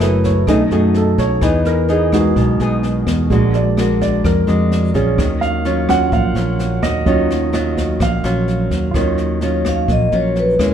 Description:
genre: bossa nova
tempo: 128 BPM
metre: 4/4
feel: straight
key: Eb minor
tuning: A4 = 438 Hz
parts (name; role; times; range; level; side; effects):
- nylon-string guitar; accompaniment; 0.0-10.7 s; Bb2 to Ab4; -19 LUFS; equal; none
- warm concert grand piano; accompaniment; 0.0-10.7 s; Gb3 to Gb5; -18 LUFS; right 2 dB; none
- fingered electric bass; bass; 0.0-10.7 s; Gb1 to F#2; -18 LUFS; equal; none
- jazz brush drum kit; drums; 0.0-10.7 s; kick drum, rim click, snare drum; -24 LUFS; left 1 dB; none
- vibraphone with soft mallets; melody; 9.4-10.7 s; Bb4 to F5; -17 LUFS; left 2 dB; none
room: wet studio reverb, RT60 0.8 s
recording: heard from further back in the room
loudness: -13 LUFS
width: side -8 dB against mid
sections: 0.0-8.9 A section; 8.9-10.7 B section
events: grand piano solo 0.0-8.9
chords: 0.5 B13; 1.4 Emaj7; 3.3 Bb7b13; 5.2 Ebm9

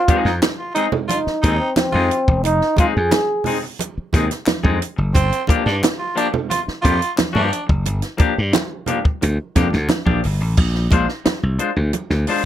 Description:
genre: funk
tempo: 89 BPM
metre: 4/4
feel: straight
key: F dorian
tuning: A4 = 441 Hz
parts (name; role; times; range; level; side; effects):
- breathy trombone; melody; 0.0-3.6 s; C4 to Ab4; -19 LUFS; equal; none
- clean electric guitar; accompaniment; 0.1-12.4 s; F3 to C5; -22 LUFS; left 5 dB; none
- slap bass; bass; 0.1-12.2 s; E1 to G2; -19 LUFS; equal; tube saturation
- compact cocktail drum kit; drums; 0.1-12.4 s; crash cymbal, hi-hat, kick drum, snare drum; -19 LUFS; equal; none
- congas; percussion; 0.1-12.4 s; none; -27 LUFS; right 5 dB; none
- raspy baritone saxophone; second line; 0.2-7.6 s; C4 to F4; -23 LUFS; right 2 dB; none
- group handclap; percussion; 0.4-10.1 s; none; -29 LUFS; left 4 dB; none
room: light reverb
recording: none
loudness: -16 LUFS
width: side -11 dB against mid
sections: 0.0-10.6 A section; 10.6-12.5 B section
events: none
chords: 0.0 Fm7; 5.2 Gm7; 10.6 Bb9

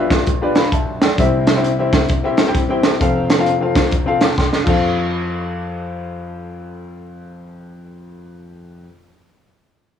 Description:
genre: uptempo gospel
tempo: 132 BPM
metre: 4/4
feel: swing 63% on 8ths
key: F major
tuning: A4 = 440 Hz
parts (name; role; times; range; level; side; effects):
- clear concert grand piano; accompaniment; 0.0-8.9 s; F1 to D6; -19 LUFS; left 2 dB; none
- crisp fusion drum kit; drums; 0.1-4.7 s; crash cymbal, hi-hat, kick drum, snare drum; -17 LUFS; right 1 dB; none
room: light reverb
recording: worn, warbling old tape, cassette tape, warbly pitch drift, small room ambience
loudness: -14 LUFS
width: side -8 dB against mid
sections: 0.0-4.8 A section; 4.8-8.5 B section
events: drum fill 4.4-4.8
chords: 0.0 G7/B; 1.2 C; 3.0 F

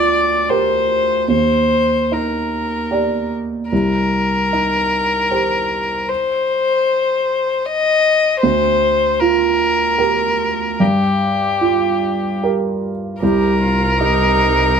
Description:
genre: neoclassical piano and strings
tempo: 76 BPM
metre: 3/4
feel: rubato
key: unclear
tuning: A4 = 440 Hz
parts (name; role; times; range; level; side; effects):
- muted violin; melody; 0.0-14.8 s; G4 to Eb5; -16 LUFS; left 3 dB; none
- warm grand piano; accompaniment; 0.0-14.8 s; C2 to D5; -18 LUFS; right 3 dB; none
- muted viola; accompaniment; 13.2-14.8 s; F4 to G4; -21 LUFS; right 8 dB; none
- muted double bass; bass; 13.2-14.8 s; C2; -21 LUFS; equal; none
- muted cello; second line; 14.0-14.8 s; Eb4; -23 LUFS; right 2 dB; none
room: moderate studio reverb, RT60 0.8 s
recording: band playing live in one room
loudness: -14 LUFS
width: side -6 dB against mid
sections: 0.0-13.2 A section; 13.2-14.8 A section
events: none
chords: 0.0 Gm7/D; 1.3 Ebmaj7; 3.7 Cm; 8.4 Gm7/D; 10.8 Gm7; 13.2 Cm

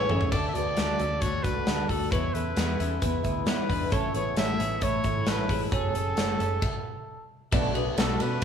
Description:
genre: jangly indie pop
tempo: 133 BPM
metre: 4/4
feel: straight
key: unclear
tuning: A4 = 440 Hz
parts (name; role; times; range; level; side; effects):
- clear trumpet; melody; 0.0-8.4 s; A4 to E5; -32 LUFS; equal; none
- fingerpicked twelve-string acoustic guitar; accompaniment; 0.0-8.4 s; A2 to G#4; -32 LUFS; right 5 dB; none
- twelve-string electric guitar; arpeggios; 0.0-8.4 s; G#3 to C#5; -33 LUFS; left 6 dB; phaser
- vintage muted fingered electric bass; bass; 0.0-8.4 s; F#1 to B2; -32 LUFS; equal; none
- big rock drum kit; drums; 0.1-8.4 s; crash cymbal, hi-hat, kick drum, ride cymbal, snare drum, toms; -29 LUFS; equal; none
room: moderate large studio reverb, RT60 1.0 s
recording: band playing live in one room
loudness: -24 LUFS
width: side -7 dB against mid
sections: 0.3-7.5 A section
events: drum fill 0.0-0.3; stop 6.6-7.5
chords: 0.3 D; 2.1 E; 3.9 A; 5.7 F#madd9; 7.5 Bm7

